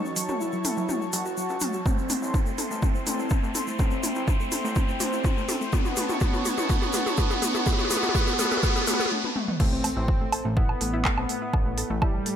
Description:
melodic techno; 124 BPM; 4/4; straight; A4 = 440 Hz
wide unison lead; melody; 0.0-12.4 s; G3 to F#4; -30 LUFS; equal; sidechain pumping, ping-pong delay
warm analog pad; sustained chords; 0.0-9.1 s; E4 to C#6; -35 LUFS; right 1 dB; chorus, sidechain pumping
soft round pluck; arpeggios; 0.0-12.3 s; F#3 to A5; -35 LUFS; equal; chorus, sidechain pumping, ping-pong delay
fat analog bass; bass; 0.0-12.2 s; F#1 to F#2; -35 LUFS; equal; sidechain pumping, high-pass filter
riser and impact; sound effects; 0.0-11.5 s; -32 LUFS; right 1 dB
egg shaker; percussion; 0.1-9.1 s; -36 LUFS; left 5 dB
techno drum kit; drums; 0.2-12.4 s; crash cymbal, handclaps, hi-hat, toms, woodblock; -29 LUFS; left 1 dB
electronic kick drum; drums; 1.9-12.1 s; -24 LUFS; equal
bowed-like drone; drone; 10.5-12.4 s; A2 to A3; -41 LUFS; left 1 dB
moderate plate reverb, RT60 1.6 s; bright 1980s-style digital production; -23 LUFS; side -9 dB against mid
0.0-9.6 A section; 9.6-12.4 B section
build-up 0.0-9.6; drum fill 0.0-9.1, 9.2-9.6; riser 0.0-9.1; filter sweep on analog synth lead 0.0-9.6; break 9.1-9.6; drop 9.6-12.4; impact 9.6-11.5
0.0 F#m; 1.9 Am; 5.7 F#m; 9.6 Amadd9

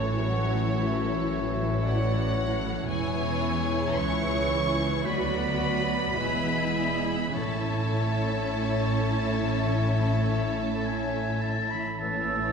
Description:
classical, slow romantic movement for symphony orchestra; 50-59 BPM; 4/4; rubato; A major; A4 = 440 Hz
warm symphonic violin section; melody; 0.0-12.5 s; C#5 to C#6; -35 LUFS; left 2 dB
mellow clarinet; second line; 0.0-12.5 s; A4 to F#5; -39 LUFS; left 1 dB
warm oboe; second line; 0.0-12.5 s; B4 to B5; -34 LUFS; equal
warm symphonic violin section; second line; 0.0-11.8 s; F#4 to E5; -37 LUFS; left 1 dB
warm bassoon; accompaniment; 0.0-12.5 s; E3 to A3; -38 LUFS; right 1 dB
warm symphonic viola section; accompaniment; 0.0-12.5 s; E3 to F#4; -33 LUFS; right 1 dB
mellow French horn section; sustained chords; 0.0-12.5 s; E3 to C#4; -34 LUFS; left 2 dB
concert harp; arpeggios; 0.0-12.5 s; A2 to E5; -36 LUFS; left 2 dB
rich symphonic cello section; bass; 0.0-12.5 s; C#2 to A2; -34 LUFS; right 2 dB
warm symphonic double bass section; bass; 0.0-12.5 s; E1 to D2; -30 LUFS; equal
small flute group; second line; 12.0-12.5 s; E6; -34 LUFS; right 6 dB
wet scoring stage reverb, RT60 1.9 s; recorded in a church or concert hall; -24 LUFS; side -6 dB against mid
0.0-12.0 A section
0.0 F#m7/A; 2.9 C#m/E; 5.1 Bm/D; 6.2 E; 7.3 A

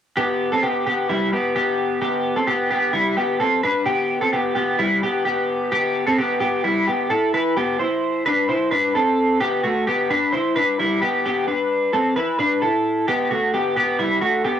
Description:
indie pop; 130 BPM; 4/4; straight; A4 = 440 Hz
electric guitar at the edge of break-up; solo; 0.2-14.6 s; G3 to C5; -18 LUFS; equal; analog chorus
moderate booth ambience, RT60 0.2 s; home recording on cassette; -18 LUFS; side -9 dB against mid
0.2-7.6 A section; 7.6-14.6 B section
0.2 Cmaj7; 3.9 Em; 7.3 E5; 7.6 Cmaj7

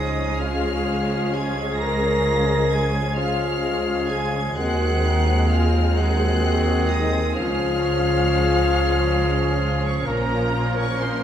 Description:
classical, slow romantic movement for symphony orchestra; 43 BPM (dotted quarters); 12/8; rubato; Db major; A4 = 444 Hz
warm symphonic violin section; melody; 0.0-11.2 s; Bb5 to Bb6; -30 LUFS; left 2 dB
bright concert flute; second line; 0.0-11.2 s; Bb4 to Bb5; -30 LUFS; left 3 dB
clear oboe; second line; 0.0-11.2 s; Ab4 to Bb4; -30 LUFS; right 2 dB
mellow clarinet; second line; 0.0-11.2 s; C4 to Db4; -33 LUFS; right 1 dB
rich symphonic violin section; second line; 0.0-11.2 s; Ab3 to Bb4; -31 LUFS; left 3 dB
rich symphonic viola section; accompaniment; 0.0-11.2 s; F3 to Db4; -29 LUFS; right 1 dB
warm bassoon; accompaniment; 0.0-11.2 s; Eb3 to F3; -31 LUFS; right 1 dB
mellow French horn section; sustained chords; 0.0-11.2 s; Bb3 to Bb4; -26 LUFS; left 4 dB
rich symphonic double bass section; bass; 0.0-11.2 s; Bb1 to Eb2; -24 LUFS; right 1 dB
warm symphonic cello section; bass; 0.0-11.2 s; Db2 to Bb2; -28 LUFS; right 1 dB
wet recital hall reverb, RT60 1.5 s; heard from further back in the room; -19 LUFS; side -9 dB against mid
0.0-11.2 A section
0.0 Db; 4.6 Ab7/Eb; 7.3 Db; 10.1 Bbm

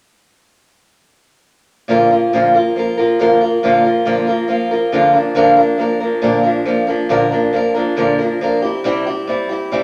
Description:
rock; 138 BPM; 4/4; straight; A4 = 436 Hz
picked old ladder-braced acoustic guitar; solo; 1.9-9.8 s; Bb2 to Bb4; -15 LUFS; equal
wet large studio reverb, RT60 1.3 s; -15 LUFS; mono
1.9-5.4 A section; 5.4-9.8 B section
1.9 Bb; 8.6 C

